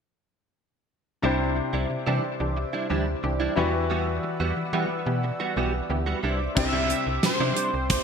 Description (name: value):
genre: 1980s-style pop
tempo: 90 BPM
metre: 4/4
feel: straight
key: unclear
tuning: A4 = 440 Hz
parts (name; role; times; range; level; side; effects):
- clear grand piano; accompaniment; 1.2-8.0 s; C3 to C5; -30 LUFS; left 4 dB; none
- chorused pulse-width pad; sustained chords; 1.2-8.0 s; C4 to E6; -33 LUFS; left 1 dB; none
- direct-recorded clean electric guitar; riff; 1.2-7.9 s; G3 to F#4; -30 LUFS; right 5 dB; ensemble chorus, ping-pong delay
- slap-like FM bass; bass; 1.2-8.0 s; B1 to E3; -28 LUFS; equal; none
- funky polysynth comp; stabs; 2.1-6.2 s; E3 to G4; -32 LUFS; right 2 dB; chorus
- octave-doubled lead; melody; 6.6-8.0 s; C5 to E5; -27 LUFS; equal; chorus
- gated 80s drum kit; drums; 6.6-8.0 s; crash cymbal, hi-hat, kick drum, snare drum; -25 LUFS; right 1 dB; gated reverb
room: wet plate reverb, RT60 1.3 s, studio reverb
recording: bright 1980s-style digital production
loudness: -23 LUFS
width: side -6 dB against mid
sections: 1.2-6.6 A section; 6.6-8.0 B section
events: none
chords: 1.2 Cadd9; 3.6 Emadd9; 6.2 Cadd9